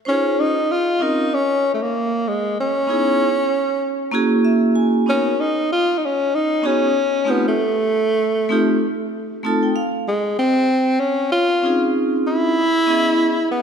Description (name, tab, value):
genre	hip hop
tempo	96 BPM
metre	4/4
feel	swing 58% on 16ths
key	unclear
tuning	A4 = 440 Hz
part	breathy tenor saxophone	melody	0.1-13.6 s	Ab3 to F4	-18 LUFS	equal	analog delay
part	vibraphone with medium hard mallets	accompaniment	0.1-13.3 s	A3 to A5	-20 LUFS	right 1 dB	none
room	wet lush hall reverb, RT60 1.9 s, small room ambience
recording	dreamy mix soaked in reverb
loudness	-16 LUFS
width	side -7 dB against mid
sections	0.1-10.1 A section; 10.1-13.6 B section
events	vibraphone fill 4.1-5.1, 9.1-10.1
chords	0.1 Bbm11; 2.6 Dbm7; 3.8 Gb7; 5.1 Bmaj7; 7.6 F7; 10.1 Ab6; 12.6 Dbm7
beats	| 0.07 0.70 1.32 1.95 | 2.57 3.20 3.82 4.45 | 5.07 5.70 6.32 6.95 | 7.57 8.20 8.82 9.45 | 10.07 10.70 11.32 11.95 | 12.57 13.20